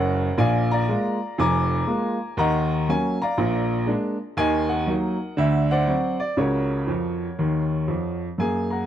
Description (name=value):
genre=jazz, stride piano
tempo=120 BPM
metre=4/4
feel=swing 64% on 8ths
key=unclear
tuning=A4 = 441 Hz
part: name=clear upright piano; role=solo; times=0.0-8.9 s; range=E#1 to D6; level=-21 LUFS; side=equal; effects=none
room=small room ambience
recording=dry, close 1970s-style studio recording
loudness=-21 LUFS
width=side -10 dB against mid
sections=0.0-8.4 A section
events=upright piano fill 6.9-8.4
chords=0.4 A#7; 2.4 D#m7; 3.4 A#7; 4.4 D#m; 5.4 D7; 6.4 F#/C#; 7.4 C#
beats=| 0.39 0.89 1.39 1.89 | 2.39 2.89 3.39 3.89 | 4.38 4.88 5.38 5.88 | 6.38 6.88 7.38 7.88 | 8.38